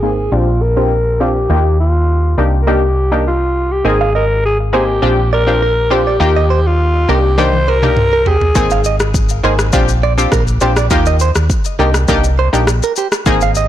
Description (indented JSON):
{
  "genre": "afrobeats",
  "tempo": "102 BPM",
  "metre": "4/4",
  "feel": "straight",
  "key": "C minor",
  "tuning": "A4 = 439 Hz",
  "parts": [
    { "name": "breathy alto saxophone", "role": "melody", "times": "0.0-8.9 s", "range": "F4 to C5", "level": "-16 LUFS", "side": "left 1 dB", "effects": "low-pass filter, ping-pong delay" },
    { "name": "analog pluck", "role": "accompaniment", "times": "0.0-13.7 s", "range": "Bb3 to Ab4", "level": "-17 LUFS", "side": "left 2 dB", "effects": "chorus, low-pass filter" },
    { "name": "hollow-body short-scale fingered electric bass", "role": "bass", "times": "0.0-13.7 s", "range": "Ab1 to Eb2", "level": "-15 LUFS", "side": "equal", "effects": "none" },
    { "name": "direct-recorded clean electric guitar", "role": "riff", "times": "4.0-13.7 s", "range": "G4 to F5", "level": "-19 LUFS", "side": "right 8 dB", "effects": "low-pass filter, ping-pong delay" },
    { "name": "afro-pop drum kit", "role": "drums", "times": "7.4-13.7 s", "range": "kick drum, rim click, shaker, toms", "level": "-16 LUFS", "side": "equal", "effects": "overdrive" }
  ],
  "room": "light reverb",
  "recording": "blown-out, overdriven recording, overdrive",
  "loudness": "-11 LUFS",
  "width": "side -12 dB against mid",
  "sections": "0.0-8.6 A section; 8.6-13.7 B section",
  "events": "filter sweep 0.0-8.6; drum fill 7.4-8.6",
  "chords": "0.3 Bb6; 1.5 Ebadd9; 2.4 Cm7; 3.8 Abadd9; 5.0 Bb6; 6.2 Ebadd9; 7.1 Cm7; 8.6 Abadd9; 9.7 Bb6; 10.9 Ebadd9; 11.8 Cm7",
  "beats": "0.32 0.91 | 1.50 2.08 2.67 3.26 | 3.85 4.44 5.03 5.61 | 6.20 6.79 7.38 7.97 | 8.55 9.14 9.73 10.32 | 10.91 11.50 12.08 12.67 | 13.26"
}